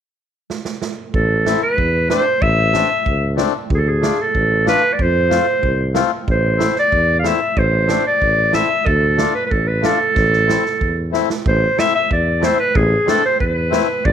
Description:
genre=klezmer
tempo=93 BPM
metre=2/4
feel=straight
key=A harmonic minor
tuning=A4 = 440 Hz
part: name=swinging big-band drum kit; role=drums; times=0.5-14.1 s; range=kick drum, snare drum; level=-23 LUFS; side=right 3 dB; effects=none
part: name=clear clarinet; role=melody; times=1.1-14.1 s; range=G#4 to F5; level=-16 LUFS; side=right 1 dB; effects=none
part: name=breathy tuba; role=bass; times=1.1-14.1 s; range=A1 to F2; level=-19 LUFS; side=equal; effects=none
part: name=accordion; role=accompaniment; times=1.5-13.9 s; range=A3 to F4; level=-22 LUFS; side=left 12 dB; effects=none
room=light reverb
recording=1960s-style stereo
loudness=-14 LUFS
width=side -8 dB against mid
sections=0.0-1.1 A section; 1.1-11.5 B section; 11.5-14.1 C section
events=drum fill 0.5-1.1, 11.1-11.5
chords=0.0 N.C.; 1.1 Am; 3.7 Dm; 5.0 F; 6.3 Am; 8.9 Dm; 10.2 Am

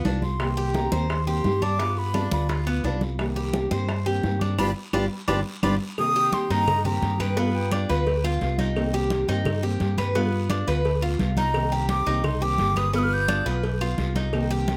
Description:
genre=latin, Cuban son and guajira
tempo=172 BPM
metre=4/4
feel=straight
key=C minor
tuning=A4 = 440 Hz
part: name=nylon-string guitar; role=accompaniment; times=0.0-14.8 s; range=C3 to G4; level=-33 LUFS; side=equal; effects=none
part: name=Cuban tres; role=arpeggios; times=0.0-14.8 s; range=B3 to C5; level=-31 LUFS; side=equal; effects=none
part: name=mellow fretless electric bass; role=bass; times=0.0-14.8 s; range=G1 to G2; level=-28 LUFS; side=equal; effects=analog chorus
part: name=congas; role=percussion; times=0.0-14.8 s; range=none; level=-33 LUFS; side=equal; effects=none
part: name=bongos and cowbell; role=percussion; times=0.1-14.8 s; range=none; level=-36 LUFS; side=equal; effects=none
part: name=guiro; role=percussion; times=0.1-14.8 s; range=none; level=-45 LUFS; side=equal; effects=none
part: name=breathy jazz flute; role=melody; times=0.2-7.9, 11.4-13.5 s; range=F5 to G6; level=-30 LUFS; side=equal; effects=plate reverb, tape echo
part: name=claves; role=percussion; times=0.4-14.5 s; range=none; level=-40 LUFS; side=equal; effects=none
room=light reverb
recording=close, detailed microphones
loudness=-24 LUFS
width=mono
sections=0.0-6.0 A section; 6.0-14.8 B section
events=band accent 4.6-6.0; drum fill 5.3-6.0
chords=0.4 Cm7; 1.8 G7; 3.2 Cm7; 4.6 G7; 6.0 Cm7; 7.4 G7; 8.8 Cm7; 10.2 G7; 11.5 Cm7; 12.9 G7

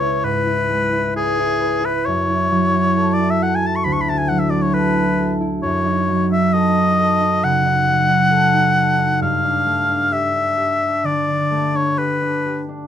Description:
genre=classical, impressionist duo for oboe and harp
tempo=66 BPM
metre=4/4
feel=rubato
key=unclear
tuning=A4 = 441 Hz
part: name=clear oboe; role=melody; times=0.0-12.6 s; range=G#4 to C#6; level=-18 LUFS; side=left 2 dB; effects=none
part: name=concert harp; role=accompaniment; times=0.0-12.9 s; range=C#2 to B4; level=-19 LUFS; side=right 1 dB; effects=none
room=light reverb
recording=none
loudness=-15 LUFS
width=side -9 dB against mid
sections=0.0-12.9 A section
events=none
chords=0.0 C#m7; 2.1 F#m7; 3.8 Dadd9; 5.6 F#m6; 9.2 Gsus2

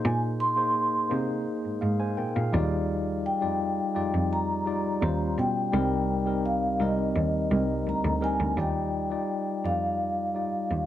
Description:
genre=lush 1970s-style soul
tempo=84 BPM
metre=4/4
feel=straight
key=unclear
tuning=A4 = 440 Hz
part: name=tine electric piano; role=accompaniment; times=0.0-10.9 s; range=F3 to Ab5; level=-29 LUFS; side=left 1 dB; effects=medium stereo tremolo
part: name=rich cello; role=bass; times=0.0-10.9 s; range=C2 to C3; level=-29 LUFS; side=right 1 dB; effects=none
part: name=vibraphone with soft mallets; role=melody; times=0.1-10.9 s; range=Eb5 to C6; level=-29 LUFS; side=left 1 dB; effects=none
room=small room ambience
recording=none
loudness=-24 LUFS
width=side -12 dB against mid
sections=0.0-8.6 A section; 8.6-10.9 B section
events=none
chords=0.0 Bb9sus4; 2.5 Ebmaj9; 5.0 Eb13; 5.7 Cm7; 8.6 Ebmaj9

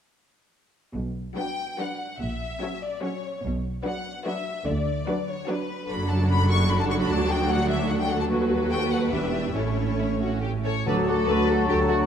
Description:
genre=classical, dramatic, fast romantic movement for symphony orchestra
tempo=147 BPM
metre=3/4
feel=rubato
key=B minor, D major from 5.9 s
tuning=A4 = 440 Hz
part: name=rich symphonic cello section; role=bass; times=0.9-12.0 s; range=D2 to D3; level=-28 LUFS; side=right 2 dB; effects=none
part: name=rich symphonic double bass section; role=bass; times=0.9-12.0 s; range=E1 to D#2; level=-29 LUFS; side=right 2 dB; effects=none
part: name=clear studio violin section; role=melody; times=1.4-12.1 s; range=B4 to C#6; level=-31 LUFS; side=left 4 dB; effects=none
part: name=rich symphonic violin section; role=second line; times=1.4-12.0 s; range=E4 to C#5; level=-31 LUFS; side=left 4 dB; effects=none
part: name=rich symphonic viola section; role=accompaniment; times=1.4-12.1 s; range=F#3 to A4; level=-29 LUFS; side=right 1 dB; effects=none
part: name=clear oboe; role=second line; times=10.9-12.1 s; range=A5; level=-32 LUFS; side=equal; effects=none
part: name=mellow clarinet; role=second line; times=10.9-12.1 s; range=D4 to F#4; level=-31 LUFS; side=left 4 dB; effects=none
part: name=small flute group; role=second line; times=10.9-12.1 s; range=C#6 to D6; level=-30 LUFS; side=right 1 dB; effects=none
part: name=mellow bassoon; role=accompaniment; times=10.9-12.1 s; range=F#3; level=-30 LUFS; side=right 3 dB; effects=none
part: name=mellow French horn section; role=sustained chords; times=10.9-12.1 s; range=F#3 to F#4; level=-30 LUFS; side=left 6 dB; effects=none
part: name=timpani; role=percussion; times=10.9-11.4 s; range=D3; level=-34 LUFS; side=left 1 dB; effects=none
room=moderate scoring stage reverb, RT60 2.0 s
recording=dark, warm production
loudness=-23 LUFS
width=side -8 dB against mid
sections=1.0-10.9 A section; 10.9-12.1 B section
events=none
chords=1.0 Bm; 2.2 F#7/A#; 3.4 Bm; 4.7 Bm/D; 5.9 D/F#; 7.1 D; 8.3 B7/D#; 9.1 Em7; 9.6 A; 10.9 D

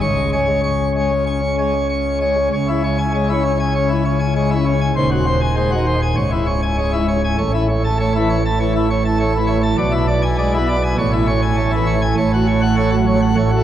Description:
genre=classical, organ toccata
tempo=99 BPM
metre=4/4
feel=straight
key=C# minor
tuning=A4 = 440 Hz
part: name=pipe organ, plenum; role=solo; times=0.0-13.6 s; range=C#1 to C#6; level=-15 LUFS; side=equal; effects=none
room=wet church reverb, RT60 3.7 s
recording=worn, warbling old tape, cassette tape, warbly pitch drift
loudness=-15 LUFS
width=side -11 dB against mid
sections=0.0-2.5 A section; 2.5-13.6 B section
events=none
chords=0.0 C#5; 2.5 C#m; 5.0 G#7/D#; 6.2 C#m; 7.4 A; 9.8 E7/B; 11.0 Amaj7; 12.2 F#m/A

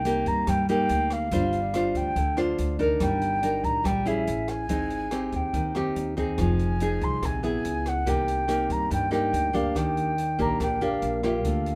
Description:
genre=bossa nova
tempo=142 BPM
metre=4/4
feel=straight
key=C minor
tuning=A4 = 440 Hz
part: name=mellow silver concert flute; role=melody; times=0.0-11.8 s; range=E5 to C6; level=-30 LUFS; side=equal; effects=none
part: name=nylon-string guitar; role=accompaniment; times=0.0-11.8 s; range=G2 to C5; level=-29 LUFS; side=equal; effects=none
part: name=upright bass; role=bass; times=0.0-11.8 s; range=F1 to G2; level=-34 LUFS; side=equal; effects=none
part: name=open jazz drum kit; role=drums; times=0.1-11.8 s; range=hi-hat, kick drum, rim click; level=-36 LUFS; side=equal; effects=none
room=light reverb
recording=none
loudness=-26 LUFS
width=mono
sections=0.0-11.8 A section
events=none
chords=0.0 Cm7; 1.3 G7sus4; 3.0 Ebmaj7/G; 4.3 Amaj7; 4.7 Abmaj7; 6.4 Fm7; 7.6 Dbm7; 8.1 Cm7; 9.8 Ebmaj7

